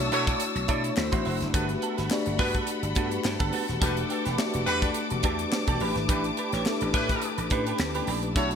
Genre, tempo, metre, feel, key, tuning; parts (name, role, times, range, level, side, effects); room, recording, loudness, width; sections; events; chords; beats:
polished 1980s jazz-funk pop; 106 BPM; 4/4; swing 54% on 16ths; A4 = 445 Hz
mellow tine electric piano; accompaniment; 0.0-8.6 s; A3 to D5; -30 LUFS; left 2 dB; ensemble chorus
warm studio string section; sustained chords; 0.0-8.6 s; D4 to E6; -34 LUFS; left 3 dB
clean electric guitar; riff; 0.0-8.6 s; B3 to E5; -33 LUFS; right 8 dB; ensemble chorus
vintage slap bass; bass; 0.0-8.6 s; D#1 to B2; -32 LUFS; equal
warm horn section; second line; 0.1-8.5 s; F#3 to C#5; -32 LUFS; left 1 dB
tight funk drum kit; drums; 0.1-8.6 s; hi-hat, kick drum, snare drum; -30 LUFS; equal; gated reverb
group handclap; percussion; 1.0-7.9 s; -41 LUFS; left 7 dB
moderate lush hall reverb, RT60 2.1 s; bright 1980s-style digital production; -24 LUFS; side -7 dB against mid
0.0-8.6 A section
0.0 Bm11; 1.0 D9; 1.5 Gmaj9; 3.8 Em11; 5.8 A9sus4
0.40 0.97 | 1.54 2.11 2.68 3.25 | 3.81 4.38 4.95 5.52 | 6.09 6.66 7.23 7.79 | 8.36